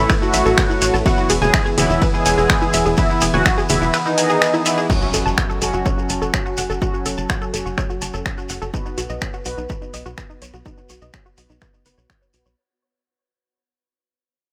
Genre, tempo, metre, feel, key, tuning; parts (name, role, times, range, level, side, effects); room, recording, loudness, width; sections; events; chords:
melodic techno; 125 BPM; 4/4; straight; F# dorian; A4 = 440 Hz
fat analog lead; melody; 0.0-4.8 s; D#4 to G#4; -23 LUFS; equal; ensemble chorus, sidechain pumping, dub echo
dark analog pad; sustained chords; 0.0-4.9 s; B4 to E6; -33 LUFS; equal; chorus, vintage 12-bit sampler grit, sidechain pumping
unison pluck; arpeggios; 0.0-12.6 s; D#4 to A5; -27 LUFS; equal; sidechain pumping, dub echo
analog synth brass; stabs; 0.0-12.5 s; E3 to B4; -26 LUFS; equal; chorus, cassette tape, sidechain pumping, dub echo
tight sequencer bass; bass; 0.0-12.6 s; E1 to B1; -27 LUFS; equal; sidechain pumping
electronic kick drum; drums; 0.1-12.2 s; -23 LUFS; equal
techno drum kit; drums; 0.1-12.4 s; congas, crash cymbal, finger snaps, hi-hat, ride cymbal; -25 LUFS; equal
shekere; percussion; 0.1-12.6 s; -31 LUFS; equal
impact; sound effects; 4.9-6.8 s; -34 LUFS; equal
light reverb, digital ambience; -18 LUFS; mono
0.0-4.9 A section; 4.9-12.6 B section
drop 0.0-4.9; fade-out 4.9-12.6; impact 4.9-6.8; filter sweep on analog polysynth 4.9-12.6
0.0 Aadd9; 1.1 E; 4.9 F#m; 8.7 Badd9